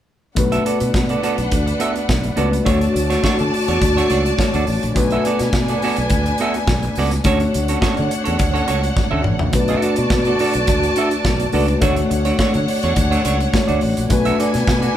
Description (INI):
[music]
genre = disco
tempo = 105 BPM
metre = 4/4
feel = straight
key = unclear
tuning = A4 = 440 Hz
[part]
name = dark studio string section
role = second line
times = 0.4-15.0 s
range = D4 to A5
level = -22 LUFS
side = equal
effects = none
[part]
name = semi-hollow electric guitar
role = accompaniment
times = 0.4-15.0 s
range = A3 to E5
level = -23 LUFS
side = right 4 dB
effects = none
[part]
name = tine electric piano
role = accompaniment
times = 0.4-15.0 s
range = A3 to C#5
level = -22 LUFS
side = left 4 dB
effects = none
[part]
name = fingered electric bass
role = bass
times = 0.4-14.9 s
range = A1 to D3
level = -22 LUFS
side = equal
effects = none
[part]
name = modern studio drum kit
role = drums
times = 0.4-15.0 s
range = hi-hat, kick drum, snare drum, toms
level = -21 LUFS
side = equal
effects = none
[sound]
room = moderate large studio reverb, RT60 1.4 s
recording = band playing live in one room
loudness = -15 LUFS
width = side -11 dB against mid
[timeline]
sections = 0.4-15.0 A section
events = drum fill 9.0-9.5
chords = 0.4 Bm7; 2.7 Dmaj7; 5.0 Bm7; 7.3 Dmaj7; 9.5 Bm7; 11.8 Dmaj7; 14.1 Bm7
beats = | 0.37 0.94 1.52 2.09 | 2.66 3.24 3.81 4.38 | 4.96 5.53 6.11 6.68 | 7.25 7.82 8.39 8.97 | 9.54 10.11 10.68 11.25 | 11.82 12.40 12.97 13.54 | 14.11 14.68